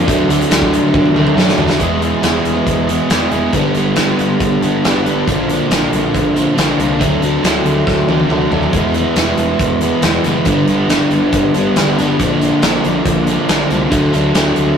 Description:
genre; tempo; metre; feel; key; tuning
quiet-loud alternative rock; 139 BPM; 4/4; straight; unclear; A4 = 440 Hz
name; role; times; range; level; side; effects
crunchy overdriven guitar; riff; 0.0-14.8 s; G2 to G#4; -14 LUFS; equal; none
fuzz picked electric bass; bass; 0.0-14.7 s; E1 to D3; -22 LUFS; equal; overdrive
big rock drum kit; drums; 0.1-14.7 s; hi-hat, kick drum, snare drum, toms; -18 LUFS; equal; none
room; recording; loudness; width
moderate studio reverb, RT60 0.7 s; rough rehearsal-room recording, tube saturation; -12 LUFS; side -7 dB against mid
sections
0.0-1.8 A section; 1.8-14.8 B section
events
drum fill 0.9-1.8, 7.9-8.7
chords
0.1 D; 1.8 E; 3.5 G; 5.3 A#; 7.0 D; 8.7 E; 10.5 G; 12.2 A#; 13.9 D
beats
| 0.08 0.51 0.94 1.37 | 1.81 2.24 2.67 3.10 | 3.54 3.97 4.41 4.84 | 5.27 5.71 6.14 6.57 | 7.00 7.44 7.87 8.30 | 8.73 9.17 9.60 10.03 | 10.46 10.90 11.33 11.76 | 12.19 12.62 13.05 13.49 | 13.92 14.35

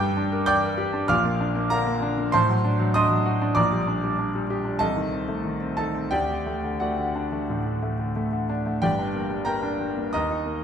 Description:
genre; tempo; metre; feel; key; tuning
classical, virtuoso piano study; 86-98 BPM; 4/4; rubato; G minor; A4 = 440 Hz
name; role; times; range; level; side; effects
clear grand piano; solo; 0.0-10.6 s; G1 to G6; -22 LUFS; equal; none
room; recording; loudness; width
wet recital hall reverb, RT60 1.4 s; none; -22 LUFS; side -8 dB against mid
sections
0.0-8.8 A section; 8.8-10.6 B section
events
none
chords
0.0 Gm; 1.1 Bb; 2.3 D7/A; 3.6 Gm/Bb; 4.8 Adim/C; 6.1 D; 8.8 Gm; 10.1 Eb5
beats
0.47 | 1.10 1.71 2.33 2.95 | 3.56 4.18 4.80 5.44 | 6.12 6.81 7.49 8.16 | 8.82 9.47 10.14

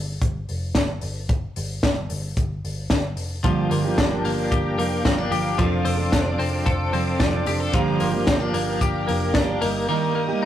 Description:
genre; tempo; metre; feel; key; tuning
jangly indie pop; 112 BPM; 4/4; straight; unclear; A4 = 444 Hz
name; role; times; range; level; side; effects
vintage muted picked electric bass; bass; 0.0-9.8 s; F1 to G1; -28 LUFS; equal; none
compact cocktail drum kit; drums; 0.2-9.7 s; hi-hat, kick drum, snare drum; -24 LUFS; equal; none
fingerpicked steel-string acoustic guitar; accompaniment; 3.4-10.5 s; G2 to A4; -25 LUFS; right 5 dB; none
ensemble organ-string; sustained chords; 3.4-10.5 s; Bb4 to Eb6; -30 LUFS; equal; ensemble chorus
twelve-string electric guitar; arpeggios; 3.4-10.5 s; F3 to A4; -25 LUFS; left 3 dB; tremolo
room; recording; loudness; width
moderate stone room reverb, RT60 1.2 s; rough rehearsal-room recording, warm saturation; -20 LUFS; side -11 dB against mid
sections
0.0-10.5 A section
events
none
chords
0.0 Fsus2; 3.4 Gm7; 5.6 F6; 7.7 Gm7; 9.6 Eb/G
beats
0.22 0.76 | 1.29 1.83 2.37 2.91 | 3.44 3.98 4.52 5.06 | 5.59 6.13 6.67 7.21 | 7.74 8.28 8.82 9.36 | 9.89 10.43

